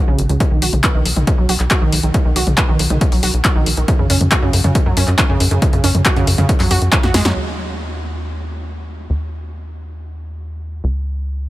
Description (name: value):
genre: uplifting trance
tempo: 138 BPM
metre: 4/4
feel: straight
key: unclear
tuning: A4 = 440 Hz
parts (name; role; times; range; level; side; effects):
- wide unison pluck; arpeggios; 0.0-7.3 s; Db3 to B4; -21 LUFS; right 3 dB; sidechain pumping, tape echo
- tight sequencer bass; bass; 0.1-11.5 s; Ab1 to Gb2; -18 LUFS; equal; sidechain pumping
- punchy analog drum machine; drums; 0.2-7.3 s; handclaps, hi-hat, snare drum, toms; -19 LUFS; left 1 dB; overdrive, low-pass filter on hats, low-pass filter on toms, low-pass filter on snare
- electronic kick drum; drums; 0.4-7.0 s; none; -17 LUFS; equal; overdrive
room: digital ambience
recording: none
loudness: -13 LUFS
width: side -16 dB against mid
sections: 0.0-7.4 A section; 7.4-11.5 B section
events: filter sweep on synth pluck 0.0-7.4; drum fill 7.0-7.4; band accent 7.3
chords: 0.4 B; 3.9 Gb5; 7.4 N.C.